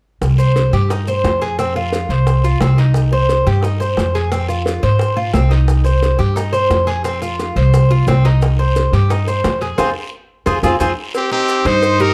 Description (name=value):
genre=latin, Cuban son and guajira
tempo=176 BPM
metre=4/4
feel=straight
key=C minor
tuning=A4 = 440 Hz
part: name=upright bass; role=bass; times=0.2-12.1 s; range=C2 to Ab2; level=-17 LUFS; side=equal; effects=none
part: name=bongos and cowbell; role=percussion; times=0.2-12.0 s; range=none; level=-26 LUFS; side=equal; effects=none
part: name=guiro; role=percussion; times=0.2-12.1 s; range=none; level=-35 LUFS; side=equal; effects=none
part: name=maracas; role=percussion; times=0.2-12.1 s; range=none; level=-42 LUFS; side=equal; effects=none
part: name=Cuban tres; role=arpeggios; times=0.4-12.1 s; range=C4 to C5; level=-21 LUFS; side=equal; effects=none
part: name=bright alto saxophone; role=second line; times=11.1-12.1 s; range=C4 to Eb4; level=-20 LUFS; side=equal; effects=none
part: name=brilliant trumpet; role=melody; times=11.2-12.1 s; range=G4 to C5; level=-19 LUFS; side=equal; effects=slapback echo
room=light reverb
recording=dark, warm production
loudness=-15 LUFS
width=mono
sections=0.2-11.1 A section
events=drum fill 9.8-11.1; band accent 9.8-11.1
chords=0.2 Cm; 1.6 F5; 3.0 Cm; 4.3 Fm; 5.7 Cm; 7.1 F5; 8.4 Cm; 9.8 Fm; 11.1 Cm